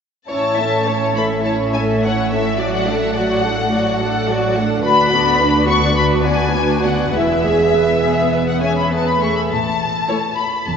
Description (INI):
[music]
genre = quick classical-period movement for string orchestra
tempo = 104 BPM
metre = 4/4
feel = rubato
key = A major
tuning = A4 = 443 Hz
[part]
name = warm studio violin section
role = melody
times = 0.3-10.8 s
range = D5 to C#6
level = -19 LUFS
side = left 4 dB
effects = none
[part]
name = rich studio violin section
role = second line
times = 0.3-10.2 s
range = D4 to F#5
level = -20 LUFS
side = left 1 dB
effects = none
[part]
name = warm studio viola section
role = accompaniment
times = 0.3-10.2 s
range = F#3 to G#4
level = -21 LUFS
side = right 2 dB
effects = none
[part]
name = warm studio cello section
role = bass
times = 0.3-10.8 s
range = D2 to A2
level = -24 LUFS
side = equal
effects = none
[part]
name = warm studio double bass section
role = bass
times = 0.3-10.8 s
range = E1 to D2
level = -24 LUFS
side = right 2 dB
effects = none
[sound]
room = wet church reverb, RT60 3.5 s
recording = recorded in a church or concert hall, nothing above 7.7 kHz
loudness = -14 LUFS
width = side -6 dB against mid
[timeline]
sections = 0.3-10.8 A section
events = none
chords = 0.3 A; 2.6 D/A; 4.8 Bm/D; 7.1 E; 9.5 A5